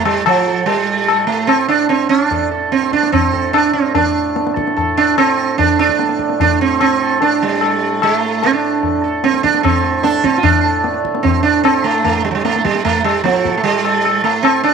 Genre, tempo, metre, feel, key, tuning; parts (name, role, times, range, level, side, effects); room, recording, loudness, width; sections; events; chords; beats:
indian classical, Hindustani; 148 BPM; 4/4; straight; A raga malkauns; A4 = 440 Hz
sitar; melody; 0.0-14.7 s; F3 to A4; -14 LUFS; right 7 dB; slapback echo
hand-pumped harmonium; drone; 0.0-14.7 s; A2 to A3; -24 LUFS; left 3 dB; stereo widening
tabla; percussion; 0.1-14.7 s; -19 LUFS; left 8 dB
light reverb, studio ambience; 1960s-style stereo with parts hard left and right; -12 LUFS; side -6 dB against mid
0.0-10.4 A section; 10.4-14.7 B section
speeding up 0.0-14.7
0.27 | 0.68 1.09 1.50 1.91 | 2.31 2.72 3.13 3.54 | 3.95 4.36 4.76 5.17 | 5.58 5.99 6.39 6.80 | 7.20 7.61 8.01 8.42 | 8.82 9.23 9.63 10.03 | 10.44 10.84 11.24 11.64 | 12.04 12.44 12.84 13.24 | 13.64 14.04 14.44